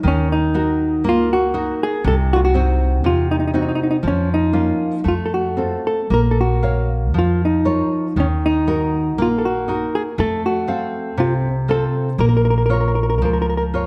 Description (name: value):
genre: fado-style ballad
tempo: 59 BPM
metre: 2/4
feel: rubato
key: Bb harmonic minor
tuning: A4 = 442 Hz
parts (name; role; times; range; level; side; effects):
- hollow-body jazz guitar; melody; 0.0-13.6 s; Db4 to Bb4; -22 LUFS; equal; none
- nylon-string guitar; accompaniment; 0.0-13.9 s; C3 to F5; -24 LUFS; equal; none
- upright bass; bass; 0.0-13.9 s; Bb1 to F2; -23 LUFS; equal; none
room: moderate recital hall reverb, RT60 1.8 s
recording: none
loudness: -18 LUFS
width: mono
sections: 0.0-13.9 A section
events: none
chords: 0.0 Ebm; 2.1 Cdim; 4.0 Bbm/F; 5.0 F; 6.1 Bbm; 8.2 Ebm; 10.2 F; 12.2 Bbm